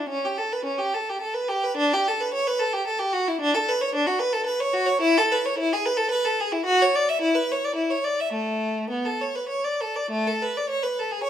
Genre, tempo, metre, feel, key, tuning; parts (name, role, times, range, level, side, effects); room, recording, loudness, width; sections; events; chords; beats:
classical, baroque-style suite movement for unaccompanied violin; 96-113 BPM; 3/4; rubato; D major, A major from 3.4 s; A4 = 440 Hz
clear violin; solo; 0.0-11.3 s; A3 to E5; -22 LUFS; equal
moderate recital hall reverb, RT60 1.3 s; close, detailed microphones; -22 LUFS; side -10 dB against mid
0.0-10.1 A section; 10.1-11.3 B section
| 0.09 0.64 1.19 | 1.76 2.32 2.86 | 3.40 3.94 4.48 | 5.03 5.58 6.12 | 6.66 7.20 7.76 | 8.33 8.92 9.50 | 10.11 10.69 11.25